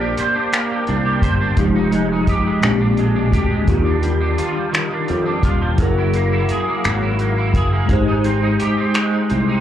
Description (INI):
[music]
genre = slow six-eight R&B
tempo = 57 BPM (dotted quarters)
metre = 6/8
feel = straight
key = unclear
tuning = A4 = 444 Hz
[part]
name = electric guitar at the edge of break-up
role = second line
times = 0.0-9.6 s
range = Bb2 to C5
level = -21 LUFS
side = right 2 dB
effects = ensemble chorus, slapback echo
[part]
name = mellow tine electric piano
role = accompaniment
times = 0.0-9.6 s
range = Bb2 to D5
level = -20 LUFS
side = left 1 dB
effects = medium stereo tremolo, slapback echo
[part]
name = sustaining fretless electric bass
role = bass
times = 0.0-9.6 s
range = Eb1 to F2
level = -19 LUFS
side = equal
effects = ensemble chorus
[part]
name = cloth-damped thuddy drum kit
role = drums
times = 0.2-9.5 s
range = finger snaps, hi-hat, kick drum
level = -19 LUFS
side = equal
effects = none
[sound]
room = light reverb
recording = live gig heard through the venue's PA, club reverb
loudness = -15 LUFS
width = side -10 dB against mid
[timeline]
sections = 0.0-9.6 A section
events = none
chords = 0.0 Bb69; 1.6 Fm9; 2.6 Bb13; 3.7 Ebmaj9; 5.8 F#9; 7.9 Abmaj7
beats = 0.53 | 1.58 2.63 | 3.68 4.74 | 5.79 6.84 | 7.89 8.95